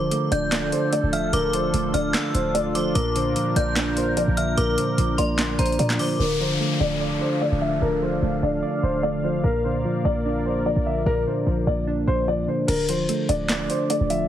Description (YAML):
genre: hip hop, trap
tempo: 148 BPM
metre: 4/4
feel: half-time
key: D minor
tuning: A4 = 440 Hz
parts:
  - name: dark concert grand piano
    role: melody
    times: 0.0-14.3 s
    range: Bb4 to E5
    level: -26 LUFS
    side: left 1 dB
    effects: low-pass filter, ping-pong delay
  - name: metallic FM bell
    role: second line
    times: 0.0-6.2 s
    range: Bb5 to G6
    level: -30 LUFS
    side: equal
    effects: chorus, ping-pong delay
  - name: soft electric-piano-like synth keys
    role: accompaniment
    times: 0.0-14.3 s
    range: Bb2 to D5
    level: -25 LUFS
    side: right 1 dB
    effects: chorus, low-pass filter
  - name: warm analog pad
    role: sustained chords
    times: 0.0-12.7 s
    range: D3 to F5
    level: -30 LUFS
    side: left 2 dB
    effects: chorus, low-pass filter
  - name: short 808-style bass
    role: bass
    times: 0.0-14.3 s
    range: D1 to Bb2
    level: -26 LUFS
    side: equal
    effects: none
  - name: trap drum kit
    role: drums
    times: 0.1-6.1, 12.7-14.2 s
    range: crash cymbal, handclaps, hi-hat, snare drum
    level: -27 LUFS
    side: equal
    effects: overdrive
  - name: downlifter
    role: sound effects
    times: 6.2-9.4 s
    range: none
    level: -32 LUFS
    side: left 2 dB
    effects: none
room: digital ambience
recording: heavily compressed radio sound, multiband compression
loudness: -20 LUFS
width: side -11 dB against mid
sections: 0.0-6.2 A section; 6.2-12.7 B section; 12.7-14.3 C section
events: filter sweep 6.2-12.7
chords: 0.0 Dm; 3.0 Bb; 6.2 Dm; 9.4 Bb; 12.7 Dm